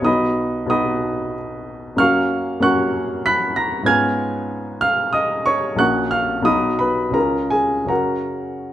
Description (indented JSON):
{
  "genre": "classical, romantic character piece for solo piano",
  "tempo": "74-97 BPM",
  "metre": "3/4",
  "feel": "rubato",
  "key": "F# major",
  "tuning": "A4 = 440 Hz",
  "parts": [
    { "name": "clear baby grand piano", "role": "solo", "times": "0.0-8.7 s", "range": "A#1 to B6", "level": "-17 LUFS", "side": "equal", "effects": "none" }
  ],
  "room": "moderate recital hall reverb, RT60 1.4 s",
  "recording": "none",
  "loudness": "-17 LUFS",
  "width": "side -12 dB against mid",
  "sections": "0.0-8.7 A section",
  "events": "none",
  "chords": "0.1 B; 2.0 F#; 3.9 C#7/G#; 5.8 F#/A#; 6.5 B; 7.2 C#; 7.9 F#"
}